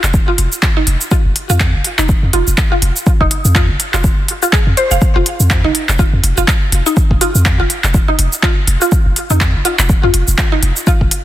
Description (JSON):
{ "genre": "minimal techno", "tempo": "123 BPM", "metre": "4/4", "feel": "swing 58% on 16ths", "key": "unclear", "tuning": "A4 = 440 Hz", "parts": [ { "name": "punchy sub bass", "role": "bass", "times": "0.0-11.1 s", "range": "F1 to F2", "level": "-14 LUFS", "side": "equal", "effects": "sidechain pumping" }, { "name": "minimal click drum kit", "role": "drums", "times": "0.0-11.2 s", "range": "handclaps, hi-hat, shaker", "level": "-17 LUFS", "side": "equal", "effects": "overdrive, studio reverb" }, { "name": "electronic kick drum", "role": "drums", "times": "0.1-11.1 s", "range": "none", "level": "-14 LUFS", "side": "equal", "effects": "overdrive, studio reverb" }, { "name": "mallet-like synth pluck", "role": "riff", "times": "0.3-11.0 s", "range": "Eb4 to F5", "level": "-18 LUFS", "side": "equal", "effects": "phaser, lush chorus, sidechain pumping, tape echo" } ], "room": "light reverb", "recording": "dense, heavily limited modern master", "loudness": "-11 LUFS", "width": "side -13 dB against mid", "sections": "0.0-11.2 A section", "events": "none", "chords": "0.0 F5" }